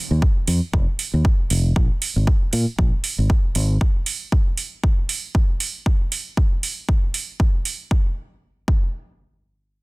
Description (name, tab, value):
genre	nu-disco, nu disco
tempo	117 BPM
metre	4/4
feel	swing 56% on 16ths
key	unclear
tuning	A4 = 438 Hz
part	fingered electric bass	bass	0.1-3.8 s	F1 to Bb2	-19 LUFS	equal	tube saturation
part	electronic kick drum	drums	0.2-8.8 s	none	-18 LUFS	equal	studio reverb
part	electronic hi-hat	drums	0.5-7.8 s	none	-25 LUFS	right 5 dB	studio reverb
room	digital ambience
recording	dense, heavily limited modern master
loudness	-18 LUFS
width	side -26 dB against mid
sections	0.0-7.9 A section; 7.9-9.8 B section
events	none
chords	none